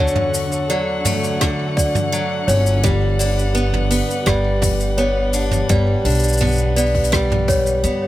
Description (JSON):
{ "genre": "folktronica", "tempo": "84 BPM", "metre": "4/4", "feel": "straight", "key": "unclear", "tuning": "A4 = 439 Hz", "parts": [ { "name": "worn celesta", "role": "second line", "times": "0.0-8.1 s", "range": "C#5 to D5", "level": "-22 LUFS", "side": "equal", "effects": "tape echo" }, { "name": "muted string quartet", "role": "sustained chords", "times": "0.0-8.1 s", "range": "D3 to C#6", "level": "-27 LUFS", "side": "left 1 dB", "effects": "none" }, { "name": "picked steel-string acoustic guitar", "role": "arpeggios", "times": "0.0-8.1 s", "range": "D3 to D4", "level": "-22 LUFS", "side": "equal", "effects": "tape echo" }, { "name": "upright bass", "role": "bass", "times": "0.0-8.1 s", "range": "G1 to G2", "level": "-20 LUFS", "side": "equal", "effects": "none" }, { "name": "soft brush drum kit", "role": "drums", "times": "0.1-8.0 s", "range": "hi-hat, rim click, shaker, toms", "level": "-24 LUFS", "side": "left 1 dB", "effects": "none" }, { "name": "electronic kick drum", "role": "drums", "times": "1.4-7.6 s", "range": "none", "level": "-20 LUFS", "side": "equal", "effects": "none" } ], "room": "light reverb, studio reverb", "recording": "none", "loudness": "-15 LUFS", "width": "side -15 dB against mid", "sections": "0.0-8.1 A section", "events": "none", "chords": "0.0 Dmaj7; 2.8 Gmaj7" }